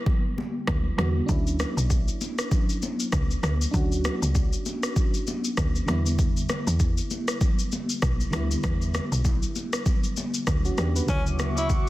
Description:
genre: afrobeats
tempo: 98 BPM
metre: 4/4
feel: swing 58% on 16ths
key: D major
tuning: A4 = 440 Hz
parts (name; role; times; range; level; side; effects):
- mellow FM electric piano; accompaniment; 0.0-11.9 s; C#3 to B4; -32 LUFS; right 1 dB; chorus
- afro-pop drum kit; drums; 0.1-11.9 s; kick drum, rim click, shaker; -26 LUFS; equal; overdrive
- congas; percussion; 0.1-11.6 s; none; -33 LUFS; left 2 dB; none
- woody log drum bass; bass; 0.7-11.8 s; B1 to E2; -26 LUFS; equal; none
- mellow tenor saxophone; melody; 11.1-11.7 s; C#4 to E4; -30 LUFS; equal; digital delay
- airy breathy pad; sustained chords; 11.1-11.9 s; F#4 to D6; -33 LUFS; equal; chorus
room: little or no reverb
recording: dense, heavily limited modern master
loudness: -23 LUFS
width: side -17 dB against mid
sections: 0.0-11.1 A section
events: break 0.0-1.3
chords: 0.0 Em7; 1.3 Dmaj9; 5.9 Em7; 11.1 Dmaj9

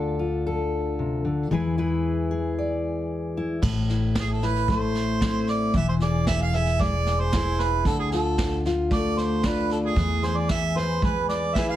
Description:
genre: acoustic folk duo or small band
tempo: 113 BPM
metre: 4/4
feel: straight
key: A harmonic minor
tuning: A4 = 440 Hz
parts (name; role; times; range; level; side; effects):
- fingerpicked steel-string acoustic guitar; accompaniment; 0.0-11.8 s; A2 to D5; -25 LUFS; left 2 dB; none
- upright bass; bass; 0.0-11.8 s; E1 to E2; -28 LUFS; right 1 dB; none
- vintage brush drum kit; drums; 3.6-11.7 s; crash cymbal, kick drum, snare drum; -28 LUFS; right 1 dB; none
- warm harmonica; second line; 4.2-11.8 s; G#4 to F5; -27 LUFS; right 4 dB; none
room: moderate studio reverb, RT60 0.8 s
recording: heavily compressed radio sound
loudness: -22 LUFS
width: side -12 dB against mid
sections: 0.0-3.6 A section; 3.6-11.8 B section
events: harmonica solo 3.6-11.8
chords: 0.0 Dm; 1.5 E; 3.6 Am; 5.7 E; 7.9 Dm; 10.0 E

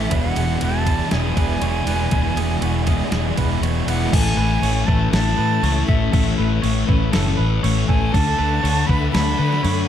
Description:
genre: rock, shoegaze and dream pop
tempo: 120 BPM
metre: 4/4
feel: straight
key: A major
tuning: A4 = 440 Hz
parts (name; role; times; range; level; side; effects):
- breathy bright jazz flute; melody; 0.0-9.9 s; E5 to B5; -25 LUFS; right 3 dB; tape echo
- string machine, violas; sustained chords; 0.0-9.9 s; G#3 to B5; -30 LUFS; equal; ensemble chorus
- direct-recorded clean electric guitar; arpeggios; 0.0-9.9 s; F#4 to C#5; -31 LUFS; right 11 dB; wide subtle chorus, tape echo
- biting overdriven guitar; riff; 0.0-4.1 s; E2 to E4; -26 LUFS; right 12 dB; reverse reverb
- thick fuzz guitar; riff; 0.0-9.9 s; E2 to D4; -23 LUFS; left 10 dB; distortion, lush chorus
- vintage muted fingered electric bass; bass; 0.0-9.8 s; E1 to D3; -21 LUFS; equal; none
- crisp 8-bit digital drum machine; drums; 0.1-9.8 s; crash cymbal, kick drum, ride cymbal, snare drum; -23 LUFS; equal; none
room: light reverb, digital ambience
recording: dark, warm production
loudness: -16 LUFS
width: side -10 dB against mid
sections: 0.0-4.1 A section; 4.1-9.9 B section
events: kick and snare drop out 3.9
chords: 0.1 E7; 4.1 Amaj7; 8.1 Dadd9

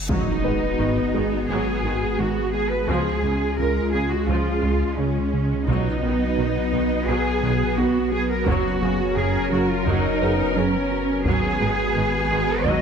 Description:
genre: cinematic, hybrid orchestral and electronic film score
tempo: 86 BPM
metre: 4/4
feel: straight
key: G# dorian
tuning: A4 = 441 Hz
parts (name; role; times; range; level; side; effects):
- punchy sub bass; bass; 0.0-12.8 s; F#1 to C#2; -29 LUFS; left 1 dB; none
- reverse cymbal and impact; sound effects; 0.0-2.9 s; none; -28 LUFS; equal; none
- rich symphonic viola section; accompaniment; 0.1-12.8 s; C#3 to A#4; -28 LUFS; equal; none
- airy breathy pad; sustained chords; 0.4-12.8 s; D#3 to C#5; -26 LUFS; left 1 dB; chorus
- chorused synth bass; riff; 0.1-12.8 s; C#2 to B3; -27 LUFS; right 2 dB; none
- rich symphonic cello section; bass; 0.1-12.8 s; C#4 to D#5; -25 LUFS; right 3 dB; none
- rich symphonic double bass section; bass; 0.1-12.7 s; F#1 to C#2; -30 LUFS; right 4 dB; none
- solo taiko drums; drums; 0.1-1.5, 5.7-12.8 s; none; -29 LUFS; left 1 dB; none
- warm concert grand piano; texture; 0.4-12.8 s; B3 to B4; -33 LUFS; left 5 dB; ping-pong delay
room: moderate concert hall reverb, RT60 1.8 s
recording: none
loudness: -19 LUFS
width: side -7 dB against mid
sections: 0.1-12.8 A section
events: impact 0.1-2.9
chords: 0.1 G#m7; 2.9 C#; 5.7 B; 8.5 F#; 11.3 G#m7

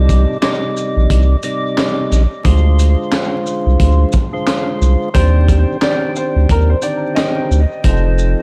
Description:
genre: hip hop, boom-bap hip-hop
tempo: 89 BPM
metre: 4/4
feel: swing 58% on 16ths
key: C minor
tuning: A4 = 438 Hz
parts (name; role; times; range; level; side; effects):
- percussive tonewheel organ; accompaniment; 0.0-8.4 s; C3 to D5; -21 LUFS; equal; slow rotary speaker, cassette tape, high-pass filter, low-pass filter, tape echo
- saturated sub bass; bass; 0.0-8.4 s; F1 to Eb2; -13 LUFS; equal; none
- crunchy breakbeat drum kit; drums; 0.1-8.4 s; handclaps, hi-hat, kick drum, shaker, snare drum; -20 LUFS; equal; none
- dark upright piano; melody; 5.1-7.5 s; Bb4 to Eb5; -24 LUFS; equal; high-pass filter, low-pass filter, tape echo
room: small room ambience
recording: echo-heavy mix, vinyl crackle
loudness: -14 LUFS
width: mono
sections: 0.0-8.4 A section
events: break 0.0-2.5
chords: 0.0 Cmadd9; 2.5 Dm7b5; 5.1 Cmadd9; 7.8 F7

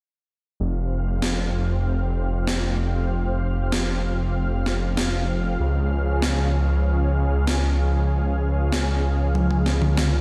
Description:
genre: synthwave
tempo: 96 BPM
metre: 4/4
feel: straight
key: F minor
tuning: A4 = 440 Hz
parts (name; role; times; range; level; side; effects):
- analog string pad; sustained chords; 0.6-10.2 s; F3 to F5; -31 LUFS; equal; ensemble chorus, shimmer reverb
- detuned saw bass; bass; 0.6-10.2 s; F1 to Db2; -24 LUFS; equal; chorus
- gated 80s digital drum machine; drums; 1.2-10.1 s; snare drum, toms; -29 LUFS; equal; gated reverb, gated reverb snare, small room ambience, slapback echo
room: light reverb, digital ambience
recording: none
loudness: -23 LUFS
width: mono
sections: 0.6-10.2 A section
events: filter sweep on detuned saw bass 0.6-10.2; drum fill 9.3-10.2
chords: 0.6 Fsus2; 5.6 Db

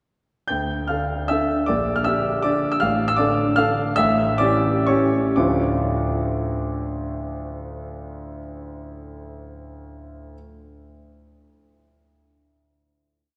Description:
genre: classical, piano waltz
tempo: 113-166 BPM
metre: 3/4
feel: rubato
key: D minor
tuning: A4 = 439 Hz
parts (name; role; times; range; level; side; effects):
- clear concert grand piano; solo; 0.5-10.3 s; A1 to G6; -23 LUFS; equal; none
room: wet cathedral reverb, RT60 4.4 s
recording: heard from further back in the room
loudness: -21 LUFS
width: mono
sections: 0.5-5.4 A section; 5.4-8.2 final chord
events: slowing down 2.3-5.4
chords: 0.5 Dm; 1.7 Gm/Bb; 2.8 Dm/A; 4.0 A7; 5.4 Dm

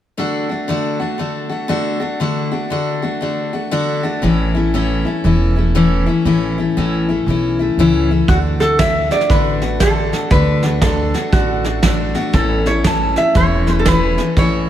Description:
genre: honky-tonk and classic country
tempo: 118 BPM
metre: 4/4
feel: swing 63% on 8ths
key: unclear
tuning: A4 = 443 Hz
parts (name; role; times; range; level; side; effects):
- picked steel-string acoustic guitar; accompaniment; 0.2-14.7 s; A2 to F#4; -17 LUFS; left 3 dB; none
- upright bass; bass; 4.2-14.7 s; E1 to D2; -19 LUFS; right 1 dB; none
- lap resonator guitar; melody; 8.3-14.7 s; F#4 to A5; -18 LUFS; right 1 dB; none
- soft brush drum kit; drums; 8.3-14.5 s; hi-hat, kick drum, snare drum; -18 LUFS; right 1 dB; none
room: moderate plate reverb, RT60 2.5 s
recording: heard from further back in the room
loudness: -14 LUFS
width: side -11 dB against mid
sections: 0.2-8.3 A section; 8.3-14.7 B section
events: none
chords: 0.2 D; 4.2 A; 8.3 D; 12.3 A

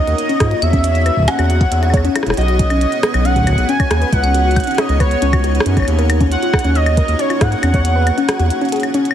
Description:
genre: IDM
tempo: 137 BPM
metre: 4/4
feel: straight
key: unclear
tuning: A4 = 440 Hz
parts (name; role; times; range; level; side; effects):
- warm velvety synth lead; melody; 0.0-8.9 s; Db5 to G#5; -20 LUFS; right 1 dB; chorus, vintage 12-bit sampler grit, ping-pong delay, shimmer reverb
- icy glass pad; sustained chords; 0.0-9.1 s; Bb3 to F#5; -23 LUFS; equal; chorus, built-in reverb, shimmer reverb
- warbly dusty pluck; arpeggios; 0.1-9.0 s; Db4 to E5; -21 LUFS; left 3 dB; chorus, digital delay, shimmer reverb
- round analog bass; bass; 0.1-8.5 s; E1 to Ab2; -16 LUFS; equal; none
- glitchy drum kit; drums; 0.1-9.1 s; cabasa, claves, hi-hat, rim click; -21 LUFS; equal; studio reverb
- electronic kick drum; drums; 0.4-7.8 s; none; -16 LUFS; equal; studio reverb
room: light reverb, digital ambience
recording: heavily compressed radio sound, multiband compression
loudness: -12 LUFS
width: side -10 dB against mid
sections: 0.0-9.1 A section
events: break 8.5-9.1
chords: 0.0 Ebm9; 0.6 E69; 2.4 B69; 4.1 Db9sus4; 5.9 Ebm9; 7.6 E69

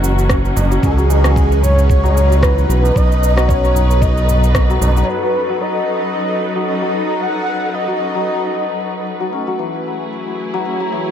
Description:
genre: organic downtempo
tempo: 113 BPM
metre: 4/4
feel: swing 56% on 16ths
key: unclear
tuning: A4 = 440 Hz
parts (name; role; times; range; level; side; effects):
- breathy flute-like synth lead; melody; 0.0-9.1 s; G#4 to F#5; -20 LUFS; equal; ensemble chorus, tape echo
- rich studio string section; sustained chords; 0.0-11.1 s; E3 to C#5; -24 LUFS; equal; sidechain pumping, low-pass filter
- santur; arpeggios; 0.0-11.1 s; E3 to D#4; -22 LUFS; left 3 dB; low-pass filter, tape echo
- round analog bass; bass; 0.0-5.0 s; F#1 to C#2; -13 LUFS; equal; sidechain pumping
- electronic shaker and rim click; drums; 0.0-11.1 s; none; -24 LUFS; right 1 dB; low-pass filter on perc, low-pass filter on snare, low-pass filter on room, dub echo
- tabla; percussion; 0.0-5.1 s; none; -26 LUFS; right 2 dB; dub echo
- electronic kick drum; drums; 0.3-4.7 s; none; -17 LUFS; equal; none
room: light reverb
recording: echo-heavy mix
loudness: -13 LUFS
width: side -9 dB against mid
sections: 0.0-5.1 A section; 5.1-11.1 B section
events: band accent 4.5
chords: 0.0 F#m7; 0.8 C#m7; 3.0 B7; 9.3 Amaj7

